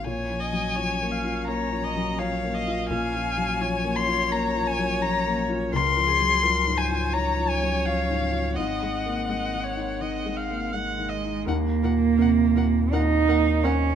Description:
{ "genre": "neoclassical piano and strings", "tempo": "84 BPM", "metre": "4/4", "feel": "rubato", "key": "Bb minor", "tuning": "A4 = 440 Hz", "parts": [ { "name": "muted violin", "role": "melody", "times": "0.0-13.7 s", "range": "F5 to C6", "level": "-26 LUFS", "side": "left 5 dB", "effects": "none" }, { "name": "felt-muted upright piano", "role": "accompaniment", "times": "0.0-13.9 s", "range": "Db2 to C5", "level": "-29 LUFS", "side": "left 4 dB", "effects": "none" }, { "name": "muted viola", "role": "accompaniment", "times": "0.0-13.7 s", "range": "Ab4 to Gb5", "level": "-32 LUFS", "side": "right 2 dB", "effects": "none" }, { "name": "warm sub bass", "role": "bass", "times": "0.0-13.9 s", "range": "Ab1 to Eb2", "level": "-29 LUFS", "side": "equal", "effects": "none" }, { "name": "muted cello", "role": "second line", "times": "0.1-13.9 s", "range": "Ab3 to Eb4", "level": "-28 LUFS", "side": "right 9 dB", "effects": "none" } ], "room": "moderate large studio reverb, RT60 1.4 s", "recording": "minimal, uncompressed stereo recording", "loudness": "-22 LUFS", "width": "side -8 dB against mid", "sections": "0.0-11.5 A section; 11.5-13.9 B section", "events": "none", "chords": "0.0 Bbm7; 5.7 Dbmaj7; 8.6 Ab7; 11.5 Ebm" }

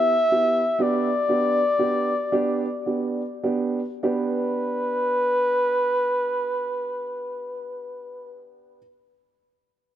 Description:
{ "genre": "pop", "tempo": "33-43 BPM (dotted quarters)", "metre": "6/8", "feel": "straight", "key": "G major", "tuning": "A4 = 439 Hz", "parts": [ { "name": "mellow flugelhorn", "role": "melody", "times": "0.0-8.4 s", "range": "B4 to E5", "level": "-23 LUFS", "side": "left 1 dB", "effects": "none" }, { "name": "dark upright piano", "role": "accompaniment", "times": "0.0-8.8 s", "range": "B3 to G4", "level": "-25 LUFS", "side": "right 3 dB", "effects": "none" } ], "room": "moderate echo chamber reverb, RT60 2.8 s", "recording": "none", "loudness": "-21 LUFS", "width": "side -11 dB against mid", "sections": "0.0-4.0 A section; 4.0-7.7 B section", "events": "slowing down 0.0-4.0", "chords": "0.0 Em; 0.8 G" }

